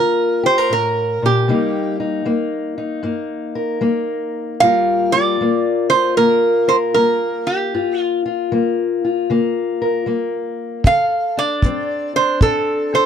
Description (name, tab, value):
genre	acoustic country blues, solo or duo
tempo	77 BPM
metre	4/4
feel	swing 66% on 8ths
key	G minor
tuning	A4 = 440 Hz
part	lap resonator guitar	melody	0.0-13.1 s	G4 to F5	-16 LUFS	right 3 dB	none
part	fingerpicked steel-string acoustic guitar	accompaniment	0.0-13.1 s	G2 to Bb4	-19 LUFS	left 4 dB	none
part	kick drum	drums	10.8-12.7 s	none	-13 LUFS	equal	none
room	small room ambience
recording	dry, close 1970s-style studio recording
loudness	-15 LUFS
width	side -8 dB against mid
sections	0.0-13.1 A section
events	none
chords	0.0 Gm7 (rootless); 1.5 Cm7; 4.6 Gm7; 10.8 D7